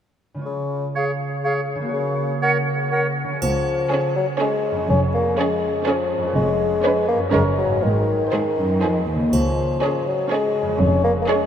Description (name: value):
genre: cinematic, playful, whimsical film cue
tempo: 122 BPM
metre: 3/4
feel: straight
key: Db major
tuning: A4 = 445 Hz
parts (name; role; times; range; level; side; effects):
- concert harp; arpeggios; 0.3-11.5 s; F2 to Db5; -26 LUFS; equal; none
- mellow bassoon; accompaniment; 0.5-11.5 s; Db3 to Db4; -22 LUFS; left 2 dB; none
- bright oboe; second line; 1.0-3.1 s; Db5; -29 LUFS; right 3 dB; none
- clear clarinet; second line; 1.0-3.1 s; Ab4 to Bb4; -30 LUFS; left 2 dB; none
- concert flute; second line; 1.0-3.0 s; F5 to Gb5; -28 LUFS; right 2 dB; none
- dark chamber double bass section; bass; 3.4-11.2 s; F1 to Db2; -24 LUFS; right 1 dB; none
- warm studio cello section; bass; 3.4-11.2 s; Db2 to Ab2; -24 LUFS; right 1 dB; none
- triangle; percussion; 3.4-4.4, 9.3-10.3 s; none; -38 LUFS; right 8 dB; none
- dark studio violin section; melody; 3.9-11.5 s; C5 to Db5; -30 LUFS; right 1 dB; none
- rich studio violin section; second line; 3.9-11.5 s; Ab4 to Cb5; -28 LUFS; right 2 dB; none
- dark studio viola section; accompaniment; 3.9-11.5 s; Db4 to Eb4; -31 LUFS; right 5 dB; none
room: wet huge ambient reverb, RT60 7.7 s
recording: in a vast, echoing space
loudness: -18 LUFS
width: side -9 dB against mid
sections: 0.5-3.4 A section; 3.4-11.5 B section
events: none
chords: 0.5 Db; 1.9 Gb/Db; 3.4 Db; 4.9 Db/F; 6.4 Db7/F; 7.3 Gb; 7.8 Ab; 9.3 Db; 10.8 Db/F